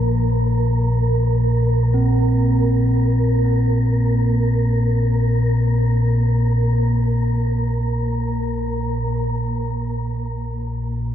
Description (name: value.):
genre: dark ambient drone.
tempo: free time.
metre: none.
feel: none.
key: unclear.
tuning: A4 = 441 Hz.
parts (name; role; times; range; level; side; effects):
gamelan-type bronze metallophone; arpeggios; 0.0-7.9 s; F3 to C4; -28 LUFS; equal; ping-pong delay.
deep rumbling drone; drone; 0.0-11.1 s; Bb1 to Bb2; -18 LUFS; equal; built-in reverb.
wind-like tuned noise texture; texture; 0.0-9.3 s; Bb3 to Bb4; -24 LUFS; right 1 dB; built-in reverb.
room: wet cathedral reverb, RT60 5.1 s.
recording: in a vast, echoing space, cassette tape.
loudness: -17 LUFS.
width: side -10 dB against mid.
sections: 0.0-9.2 A section; 9.2-11.1 B section.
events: none.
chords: 0.0 Bbsus2; 9.2 N.C..